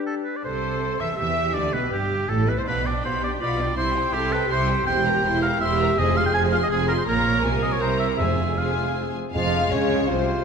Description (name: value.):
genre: quick classical-period movement for symphony orchestra.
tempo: 162 BPM.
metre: 3/4.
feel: straight.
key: C major, F minor from 4.9 s.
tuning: A4 = 440 Hz.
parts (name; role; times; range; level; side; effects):
clear oboe; second line; 0.0-9.0 s; G4 to Ab5; -25 LUFS; right 1 dB; none.
mellow clarinet; second line; 0.0-0.2, 9.3-10.4 s; C4 to F4; -31 LUFS; right 1 dB; none.
silver concert flute; second line; 0.0-0.1, 9.3-10.4 s; C5 to F5; -34 LUFS; left 2 dB; none.
warm bassoon; accompaniment; 0.0-0.2, 9.3-10.4 s; G3 to F4; -28 LUFS; left 2 dB; none.
warm studio violin section; second line; 0.4-10.4 s; B3 to F5; -32 LUFS; left 5 dB; none.
warm studio viola section; accompaniment; 0.4-10.4 s; C3 to Bb4; -28 LUFS; right 1 dB; none.
warm studio violin section; melody; 0.5-10.4 s; G4 to C6; -30 LUFS; left 4 dB; none.
clear studio cello section; bass; 0.5-10.4 s; C2 to E3; -28 LUFS; right 3 dB; none.
warm studio double bass section; bass; 0.5-10.4 s; E1 to E2; -28 LUFS; right 3 dB; none.
timpani; percussion; 6.0-9.9 s; F2; -31 LUFS; left 1 dB; none.
mellow French horn section; sustained chords; 9.3-10.4 s; C3 to F3; -32 LUFS; left 4 dB; none.
room: wet concert hall reverb, RT60 2.1 s.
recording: minimal, uncompressed stereo recording.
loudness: -20 LUFS.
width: side -6 dB against mid.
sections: 0.5-9.3 A section; 9.3-10.4 B section.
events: none.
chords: 0.5 C; 1.6 G; 2.7 G7/B; 3.8 C; 4.9 C7/E; 6.0 Fm; 7.1 Bbm; 7.5 Fm/C; 8.2 Fm.